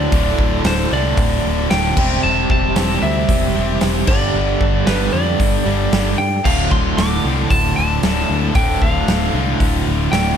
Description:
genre	hard rock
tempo	114 BPM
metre	4/4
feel	straight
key	D minor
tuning	A4 = 440 Hz
part	lightly driven lead guitar	melody	0.0-10.4 s	B4 to D6	-22 LUFS	right 1 dB	none
part	overdriven tonewheel organ	sustained chords	0.0-10.3 s	G3 to F5	-32 LUFS	equal	none
part	overdriven electric guitar	riff	0.0-10.4 s	D2 to C4	-23 LUFS	left 15 dB	none
part	overdriven semi-hollow guitar	riff	0.0-10.4 s	D2 to C4	-24 LUFS	right 12 dB	tremolo
part	tight distorted guitar	riff	0.0-10.4 s	D2 to C4	-26 LUFS	equal	distortion
part	modern bright picked electric bass	bass	0.0-10.3 s	D1 to G2	-21 LUFS	equal	none
part	huge arena drum kit	drums	0.1-10.2 s	crash cymbal, hi-hat, kick drum, snare drum	-19 LUFS	equal	none
room	little or no reverb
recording	none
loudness	-14 LUFS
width	side -8 dB against mid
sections	0.0-10.4 A section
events	none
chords	0.0 Dm; 2.0 C/E; 4.1 G5; 6.4 Dm

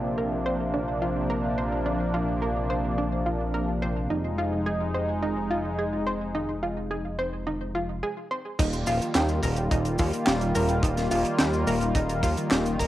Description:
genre	synthwave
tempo	107 BPM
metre	4/4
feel	straight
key	unclear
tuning	A4 = 439 Hz
part	warm analog pad	sustained chords	0.0-12.9 s	C3 to F4	-28 LUFS	equal	chorus, tremolo, sidechain pumping, cassette tape
part	analog pluck	arpeggios	0.0-12.9 s	D4 to C5	-30 LUFS	right 1 dB	chorus, cassette tape, tape echo
part	chorused synth bass	bass	0.0-12.9 s	Eb1 to Eb2	-30 LUFS	equal	none
part	crisp fusion drum kit	drums	8.6-12.9 s	cabasa, crash cymbal, handclaps, hi-hat, snare drum	-29 LUFS	equal	cassette tape
part	kick drum	drums	8.6-12.9 s	none	-27 LUFS	equal	cassette tape
room	moderate spring reverb, RT60 1.1 s, small room ambience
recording	home recording on cassette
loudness	-24 LUFS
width	side -14 dB against mid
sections	0.0-8.6 A section; 8.6-12.9 B section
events	none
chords	0.0 Bbadd9; 4.1 Fm7; 8.6 Ebadd9

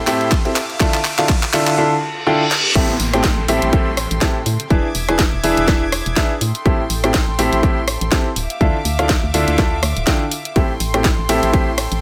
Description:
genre	piano house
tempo	123 BPM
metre	4/4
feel	swing 56% on 16ths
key	A minor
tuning	A4 = 442 Hz
part	dark studio violin section	sustained chords	0.0-12.0 s	A4 to G#6	-30 LUFS	equal	sidechain pumping
part	riser, reverse cymbal and downlifter	sound effects	0.3-6.7 s	none	-26 LUFS	equal	none
part	clear concert grand piano	riff	0.1-11.7 s	A2 to A5	-21 LUFS	equal	sidechain pumping, digital delay
part	house drum kit	drums	0.1-12.0 s	crash cymbal, handclaps, hi-hat, ride cymbal, rim click, snare drum	-23 LUFS	equal	high-pass filter on snare, high-pass filter on hats, high-pass filter on cymbals, high-pass filter on room
part	electronic kick drum	drums	0.3-11.6 s	none	-20 LUFS	equal	none
part	organ-like FM bass	bass	2.8-12.0 s	D1 to A2	-25 LUFS	equal	tube saturation, sidechain pumping
room	light reverb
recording	none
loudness	-17 LUFS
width	mono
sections	0.0-2.8 A section; 2.8-12.0 B section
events	build-up 0.0-2.8; drum fill 0.0-1.8, 2.5; riser 0.3-1.8; reverse cymbal 1.8-2.8; drop 2.8-12.0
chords	0.0 Am7; 0.6 Dmadd9; 2.8 Am7; 4.7 E7; 6.4 Am7; 8.4 Dmadd9; 10.6 Am7

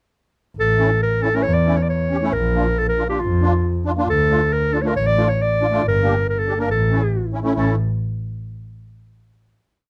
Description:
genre	klezmer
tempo	138 BPM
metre	4/4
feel	straight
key	A phrygian dominant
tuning	A4 = 440 Hz
part	warm clarinet	melody	0.6-7.8 s	F4 to D5	-22 LUFS	equal	none
part	rich double bass	bass	0.6-7.8 s	G1 to F2	-23 LUFS	equal	none
part	musette accordion	accompaniment	0.8-7.8 s	A3 to Bb4	-25 LUFS	equal	none
room	light reverb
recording	dark, warm production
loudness	-19 LUFS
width	mono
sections	0.6-7.6 A section; 7.6-9.3 final chord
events	none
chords	0.6 A; 2.3 Bb; 4.1 Dm; 5.8 Gm; 6.7 A

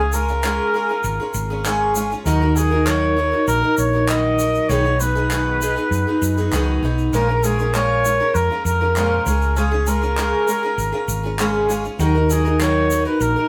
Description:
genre	indie folk with a building arrangement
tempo	99 BPM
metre	4/4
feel	straight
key	Db mixolydian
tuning	A4 = 441 Hz
part	warm trumpet	melody	0.0-13.5 s	Ab4 to Eb5	-24 LUFS	equal	none
part	picked twelve-string acoustic guitar	accompaniment	0.0-13.5 s	Bb2 to Bb4	-23 LUFS	equal	none
part	hollow-body short-scale fingered electric bass	bass	0.0-13.3 s	Ab1 to Gb2	-24 LUFS	equal	none
part	tube shaker	percussion	0.1-13.3 s	none	-34 LUFS	equal	none
part	group handclap	percussion	0.4-12.7 s	none	-28 LUFS	equal	none
room	moderate studio reverb, RT60 0.6 s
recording	band playing live in one room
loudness	-19 LUFS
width	mono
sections	0.0-13.5 A section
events	none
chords	0.0 Db; 2.3 Ebm; 4.7 Cb6; 7.1 Bbm7; 9.3 Db; 12.0 Ebm

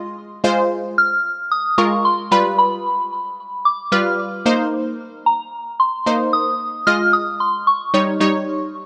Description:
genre	pop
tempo	112 BPM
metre	4/4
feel	straight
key	Ab major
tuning	A4 = 439 Hz
part	soft synth bell	melody	0.0-8.7 s	Bb5 to F6	-20 LUFS	equal	chorus, phaser, delay
part	analog pluck	accompaniment	0.0-8.6 s	G3 to Eb5	-22 LUFS	equal	chorus, phaser
room	light reverb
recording	worn, warbling old tape, cassette tape, warbly pitch drift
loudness	-18 LUFS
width	mono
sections	0.0-8.9 A section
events	none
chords	0.4 Ab6; 2.3 G7; 4.5 Cm7; 6.9 Fm7; 7.9 Eb7

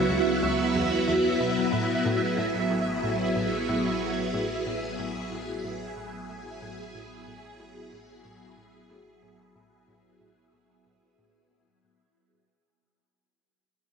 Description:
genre	ambient, sequencer-driven space music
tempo	92 BPM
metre	4/4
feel	straight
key	unclear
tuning	A4 = 440 Hz
part	phased string machine	sustained chords	0.0-12.2 s	F#3 to G#4	-26 LUFS	equal	ensemble chorus, phaser
part	warm sub bass	bass	0.0-12.1 s	A1 to C#2	-46 LUFS	equal	none
part	pulsing gated texture	texture	0.0-12.2 s	E5	-34 LUFS	right 3 dB	chorus, built-in reverb
part	analog pluck	riff	0.1-12.0 s	C#2 to B2	-34 LUFS	equal	chorus, cassette tape, tape echo
room	wet plate reverb, RT60 2.8 s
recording	cassette tape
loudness	-24 LUFS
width	side -6 dB against mid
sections	0.0-12.2 A section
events	fade-out on synth arpeggio sound 0.0-12.2; fade-out on sub bass 0.0-12.2; fade-out 0.0-12.2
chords	0.0 C#m7; 1.7 Asus2

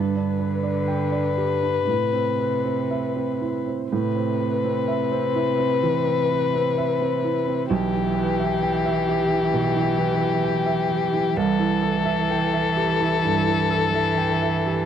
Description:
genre	neoclassical piano and strings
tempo	58-67 BPM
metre	4/4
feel	rubato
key	A minor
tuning	A4 = 440 Hz
part	muted violin	melody	0.0-14.9 s	G4 to B4	-24 LUFS	left 8 dB	tape echo
part	muted cello	second line	0.0-14.9 s	C3 to E3	-27 LUFS	right 3 dB	none
part	warm grand piano	accompaniment	0.0-14.9 s	B1 to G5	-24 LUFS	right 5 dB	none
room	light reverb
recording	dry, close 1970s-style studio recording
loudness	-20 LUFS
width	side -9 dB against mid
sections	0.0-3.9 A section; 3.9-14.9 A section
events	none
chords	0.0 G; 1.9 Amadd9; 7.7 Em/B; 11.4 C6

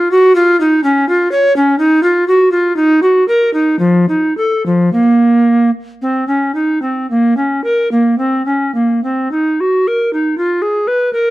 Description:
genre	classical, baroque-style fantasia for unaccompanied recorder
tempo	51-63 BPM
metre	4/4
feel	rubato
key	Bb minor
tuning	A4 = 441 Hz
part	bright bass recorder	solo	0.0-11.3 s	F3 to Db5	-10 LUFS	equal	none
room	moderate stone room reverb, RT60 1.0 s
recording	dark, warm production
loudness	-10 LUFS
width	side -17 dB against mid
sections	0.0-9.3 A section; 9.3-11.3 A section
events	none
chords	none

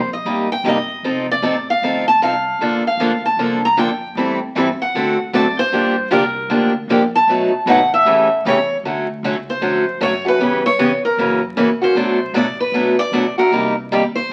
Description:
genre	acoustic string swing (jazz manouche)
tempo	154 BPM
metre	4/4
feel	swing 62% on 8ths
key	Bb major, D major from 8.8 s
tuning	A4 = 439 Hz
part	picked steel-string acoustic guitar	melody	0.0-14.3 s	Bb4 to Bb5	-20 LUFS	equal	none
part	upright bass	bass	0.0-14.3 s	F1 to A2	-37 LUFS	equal	none
part	picked steel-string acoustic guitar	accompaniment	0.3-14.0 s	B2 to A4	-20 LUFS	equal	none
part	picked steel-string acoustic guitar	accompaniment	2.6-8.6 s	B2 to B4	-27 LUFS	equal	none
room	wet studio reverb, RT60 0.8 s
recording	very old 78 rpm record, vinyl crackle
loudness	-17 LUFS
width	mono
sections	0.0-8.8 A section; 8.8-14.3 A section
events	steel-string acoustic guitar solo 0.0-8.8, 8.8-14.3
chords	0.0 Cm7; 1.0 F7; 2.6 Bbmaj9; 4.2 Am7; 4.9 D7; 5.7 Gm7; 7.3 B7; 8.1 A7; 8.8 Dmaj7; 10.4 C#m7b5; 11.2 F#7; 12.0 Bm7; 13.5 Cm7

